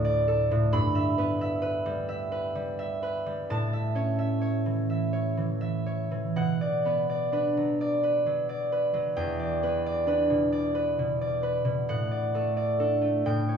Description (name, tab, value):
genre	classical, solo harp piece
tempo	40-45 BPM (dotted quarters)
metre	6/8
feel	rubato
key	D major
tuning	A4 = 441 Hz
part	concert harp	solo	0.0-13.6 s	D2 to B5	-25 LUFS	right 1 dB	none
room	wet recital hall reverb, RT60 1.6 s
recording	heard from further back in the room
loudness	-25 LUFS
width	side -7 dB against mid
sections	0.0-13.6 A section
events	none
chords	0.0 D; 0.7 Em/G; 3.5 A; 6.4 Bm; 9.2 Em7; 11.9 D/A